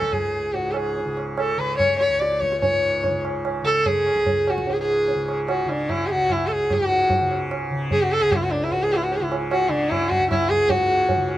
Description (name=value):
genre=indian classical, Hindustani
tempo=148 BPM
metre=5/4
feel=straight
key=C# raga bhairavi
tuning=A4 = 440 Hz
part: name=warm sarangi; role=melody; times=0.0-11.3 s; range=D4 to D5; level=-20 LUFS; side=equal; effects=none
part: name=tanpura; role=drone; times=0.0-11.4 s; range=C#2 to C#3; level=-29 LUFS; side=equal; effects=none
part: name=tabla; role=percussion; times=0.0-11.4 s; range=none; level=-28 LUFS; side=right 3 dB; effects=none
room=light reverb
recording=close, detailed microphones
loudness=-19 LUFS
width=side -14 dB against mid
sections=0.0-6.7 A section; 6.7-11.4 B section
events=speeding up 0.0-11.4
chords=none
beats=0.12 | 0.54 0.96 1.37 1.79 2.20 | 2.62 3.03 3.44 3.85 4.26 | 4.67 5.08 5.49 5.89 6.30 | 6.70 7.11 7.51 7.91 8.31 | 8.71 9.11 9.51 9.90 10.30 | 10.69 11.09